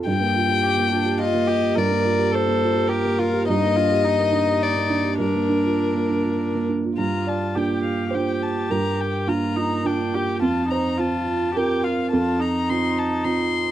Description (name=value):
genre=neoclassical piano and strings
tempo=105 BPM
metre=3/4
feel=rubato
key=G minor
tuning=A4 = 440 Hz
part: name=felt-muted upright piano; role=accompaniment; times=0.0-13.7 s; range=F2 to D5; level=-22 LUFS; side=right 3 dB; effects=none
part: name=warm violin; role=melody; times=0.1-13.7 s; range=Bb4 to C6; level=-25 LUFS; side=left 7 dB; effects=none
part: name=rich viola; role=accompaniment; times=0.6-13.7 s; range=D4 to Bb4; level=-26 LUFS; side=right 1 dB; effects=none
room=small room ambience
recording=dry, close 1970s-style studio recording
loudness=-19 LUFS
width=side -12 dB against mid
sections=0.0-7.0 A section; 7.0-13.7 B section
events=none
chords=0.1 Gm7; 3.5 Ebmaj7/G; 5.2 Gm7; 10.4 F